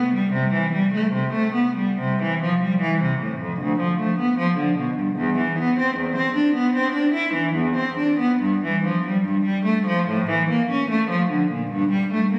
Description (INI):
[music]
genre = classical, baroque-style suite movement for unaccompanied cello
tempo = 74 BPM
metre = 4/4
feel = rubato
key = unclear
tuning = A4 = 441 Hz
[part]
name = rich cello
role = solo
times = 0.0-12.4 s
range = D2 to E4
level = -22 LUFS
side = equal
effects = none
[sound]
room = wet concert hall reverb, RT60 1.9 s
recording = recorded on a phone in the room, club reverb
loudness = -22 LUFS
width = mono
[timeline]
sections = 0.0-12.4 A section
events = none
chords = none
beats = 0.32 1.13 | 1.98 2.80 3.59 4.38 | 5.17 5.97 6.76 7.54 | 8.39 9.22 10.05 10.87 | 11.69